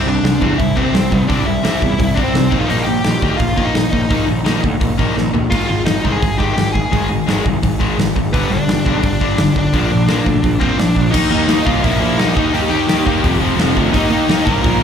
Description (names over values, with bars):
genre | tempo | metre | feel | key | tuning
punk rock | 170 BPM | 4/4 | straight | unclear | A4 = 440 Hz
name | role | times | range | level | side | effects
smooth overdriven lead guitar | melody | 0.0-14.8 s | B3 to Bb5 | -20 LUFS | left 2 dB | digital delay
crunchy overdriven guitar | riff | 0.0-14.8 s | F2 to Eb4 | -20 LUFS | right 10 dB | slapback echo
distorted electric guitar | riff | 0.0-14.8 s | F2 to Eb4 | -20 LUFS | left 11 dB | overdrive
fuzz picked electric bass | bass | 0.0-14.8 s | F1 to E2 | -21 LUFS | equal | overdrive
big rock drum kit | drums | 0.2-14.7 s | crash cymbal, hi-hat, kick drum, snare drum, toms | -19 LUFS | equal | none
high-gain distorted guitar | riff | 11.1-14.8 s | F2 to Eb4 | -21 LUFS | left 1 dB | distortion, slapback echo
room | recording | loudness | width
light reverb | live gig heard through the venue's PA, club reverb | -13 LUFS | side -8 dB against mid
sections
0.0-11.1 A section; 11.1-14.8 B section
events
drum fill 5.2-5.5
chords
0.0 C; 2.5 Eb/Bb; 5.5 Ab5; 8.3 G; 9.7 Bb; 11.1 Eb5; 11.8 Bb5; 12.4 Eb; 13.2 F5; 13.9 Eb5